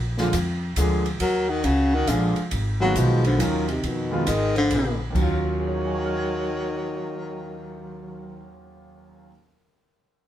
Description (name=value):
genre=jazz, small-group swing and bop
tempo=137 BPM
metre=3/4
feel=swing 66% on 8ths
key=Eb minor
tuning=A4 = 440 Hz
part: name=upright bass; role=bass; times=0.0-9.2 s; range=Ab1 to F2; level=-26 LUFS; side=equal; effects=none
part: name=clear concert grand piano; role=accompaniment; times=0.2-9.5 s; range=Eb2 to Ab6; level=-28 LUFS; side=right 1 dB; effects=none
part: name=open jazz drum kit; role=drums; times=0.2-7.7 s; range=crash cymbal, cymbal swell, hi-hat, kick drum, ride cymbal, snare drum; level=-30 LUFS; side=right 1 dB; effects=none
part: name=warm baritone saxophone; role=melody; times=1.2-8.5 s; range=Cb3 to Gb3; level=-26 LUFS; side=left 2 dB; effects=none
part: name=breathy alto saxophone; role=second line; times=1.2-8.5 s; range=Eb3 to Bb4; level=-30 LUFS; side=right 2 dB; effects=none
room=moderate stone room reverb, RT60 1.1 s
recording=band playing live in one room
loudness=-21 LUFS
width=side -11 dB against mid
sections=0.0-2.5 A section; 2.5-5.2 B section; 5.2-7.8 C section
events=none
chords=0.0 Bb7; 1.2 Gb6; 2.1 Bb7; 2.5 Abm7; 3.4 Ebm9; 3.8 Fm7b5; 4.7 Bb7b9; 5.2 Ebm9